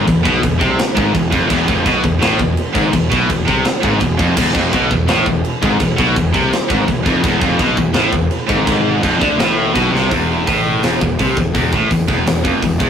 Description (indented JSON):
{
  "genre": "heavy metal",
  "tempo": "167 BPM",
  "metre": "4/4",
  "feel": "straight",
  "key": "E phrygian dominant",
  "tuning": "A4 = 439 Hz",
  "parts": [
    { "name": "distorted electric guitar", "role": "riff", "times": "0.0-12.9 s", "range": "E2 to D3", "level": "-18 LUFS", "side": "left 3 dB", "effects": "distortion" },
    { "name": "heavy high-gain guitar", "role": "riff", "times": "0.0-12.9 s", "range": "E2 to D3", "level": "-19 LUFS", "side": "right 4 dB", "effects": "distortion" },
    { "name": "high-gain distorted guitar", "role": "riff", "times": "0.0-10.1 s", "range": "E2 to D3", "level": "-21 LUFS", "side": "right 1 dB", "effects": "distortion" },
    { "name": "fuzz picked electric bass", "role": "bass", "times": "0.0-12.9 s", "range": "E1 to D2", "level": "-22 LUFS", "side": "equal", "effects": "overdrive" },
    { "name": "tight metal drum kit", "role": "drums", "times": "0.1-12.9 s", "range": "china cymbal, crash cymbal, hi-hat, kick drum, snare drum", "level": "-18 LUFS", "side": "equal", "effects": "none" }
  ],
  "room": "moderate small room reverb, RT60 0.5 s",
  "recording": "rough rehearsal-room recording, tube saturation",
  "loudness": "-13 LUFS",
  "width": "side -8 dB against mid",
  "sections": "0.0-10.1 A section; 10.1-12.9 B section",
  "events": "drum fill 9.9",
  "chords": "0.0 E; 10.1 N.C."
}